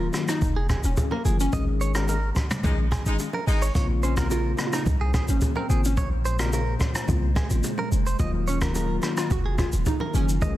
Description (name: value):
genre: afrobeats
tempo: 108 BPM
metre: 4/4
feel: straight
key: unclear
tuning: A4 = 439 Hz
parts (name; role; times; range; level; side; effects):
- glassy wavetable pluck; melody; 0.0-10.6 s; Bb3 to Gb4; -32 LUFS; right 1 dB; chorus
- bell-like tine electric piano; accompaniment; 0.0-10.6 s; Db3 to Ab4; -31 LUFS; left 5 dB; none
- direct-recorded clean electric guitar; riff; 0.0-10.5 s; Ab4 to Eb5; -34 LUFS; right 4 dB; none
- hard-hitting 808-style bass; bass; 0.0-10.6 s; Eb1 to C2; -24 LUFS; equal; none
- jazz brush drum kit; drums; 0.1-10.6 s; hi-hat, kick drum, rim click, shaker, toms; -27 LUFS; equal; soft clipping on snare
- bongos and congas; percussion; 0.1-10.6 s; none; -35 LUFS; right 1 dB; none
- warm horn section; second line; 2.6-3.6 s; Ab3 to Eb4; -34 LUFS; left 1 dB; tape echo
- glassy FM pad; sustained chords; 4.1-10.6 s; Bb2 to C5; -34 LUFS; right 1 dB; ensemble chorus, built-in reverb
room: little or no reverb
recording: dense, heavily limited modern master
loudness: -22 LUFS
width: side -14 dB against mid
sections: 0.0-10.6 A section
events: band accent 1.5-3.8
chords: 0.0 Ebmadd9; 1.5 Absus4; 3.8 Bbmadd9; 8.2 Ebmadd9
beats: 0.42 0.97 | 1.53 2.08 2.64 3.19 | 3.75 4.31 4.86 5.42 | 5.97 6.53 7.08 7.64 | 8.20 8.75 9.31 9.86 | 10.42